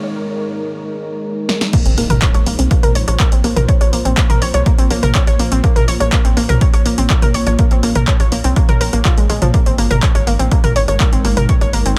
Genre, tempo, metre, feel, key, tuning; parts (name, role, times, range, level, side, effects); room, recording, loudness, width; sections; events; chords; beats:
melodic techno; 123 BPM; 4/4; straight; Bb minor; A4 = 440 Hz
deep dark ambient pad; sustained chords; 0.0-12.0 s; Ab3 to Db5; -26 LUFS; equal; chorus, built-in reverb, sidechain pumping
punchy analog drum machine; drums; 1.5-12.0 s; crash cymbal, handclaps, hi-hat, rim click, snare drum, toms; -22 LUFS; equal; sidechain pumping on hats, sidechain pumping on toms, sidechain pumping on cymbals
warbly dusty pluck; arpeggios; 1.7-11.9 s; F3 to Db5; -23 LUFS; equal; chorus, sidechain pumping, dub echo
electronic kick drum; drums; 1.7-11.6 s; -17 LUFS; equal
impact; sound effects; 1.7-3.7 s; -28 LUFS; equal
tight sequencer bass; bass; 1.9-12.0 s; Ab1 to C2; -20 LUFS; equal; sidechain pumping
digital ambience; -14 LUFS; mono
0.0-1.7 A section; 1.7-12.0 B section
break 0.0-1.7; build-up 0.0-1.7; filter sweep on ambient pad 0.0-1.7; drum fill 1.5; drop 1.7-12.0; impact 1.7-3.7
0.0 Absus2; 1.7 Bbmadd9; 9.5 Absus2
0.27 0.76 1.25 | 1.73 2.22 2.71 3.20 | 3.69 4.17 4.66 5.15 | 5.64 6.12 6.61 7.10 | 7.59 8.07 8.56 9.05 | 9.54 10.03 10.51 11.00 | 11.49 11.98